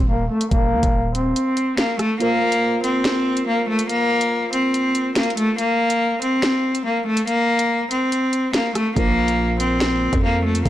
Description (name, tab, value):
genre	hip hop, drill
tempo	142 BPM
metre	4/4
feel	half-time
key	unclear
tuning	A4 = 441 Hz
part	bright cello	melody	0.0-10.7 s	A3 to C4	-19 LUFS	left 1 dB	low-pass filter
part	growling 808-style bass	bass	0.0-1.3, 9.0-10.7 s	Eb1 to F2	-23 LUFS	equal	none
part	drill drum kit	drums	0.4-10.7 s	finger snaps, hi-hat, kick drum, rim click, snare drum	-22 LUFS	equal	none
part	muted felt-like synth keys	accompaniment	2.2-5.6, 9.0-10.7 s	Bb3 to C5	-27 LUFS	right 3 dB	chorus, low-pass filter
room	light reverb, digital ambience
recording	blown-out, overdriven recording, overdrive, faint mains hum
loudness	-17 LUFS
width	side -13 dB against mid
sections	0.0-10.7 A section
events	filter sweep 0.0-2.2; kick muted 1.4-2.2, 2.2-9.0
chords	0.0 Eb5; 2.2 Bbsus2; 5.6 N.C.; 9.0 Bbsus2